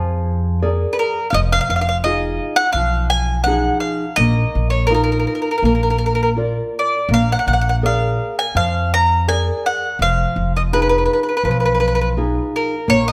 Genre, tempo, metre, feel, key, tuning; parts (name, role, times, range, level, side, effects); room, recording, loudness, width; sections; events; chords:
italian folk, Italian serenade; 83 BPM; 4/4; straight; A4 = 436 Hz
mandolin; melody; 0.0-13.1 s; Ab4 to Bb5; -20 LUFS; equal
nylon-string guitar; accompaniment; 0.0-13.1 s; F3 to D5; -25 LUFS; equal
upright bass; bass; 0.0-13.1 s; F1 to F2; -22 LUFS; equal
moderate recital hall reverb, RT60 1.5 s; -18 LUFS; mono
0.0-13.1 A section
0.0 Bb7; 1.3 Fm7b5; 4.2 Bbsus4; 5.6 Bb; 7.1 Bb7; 10.0 Fm7b5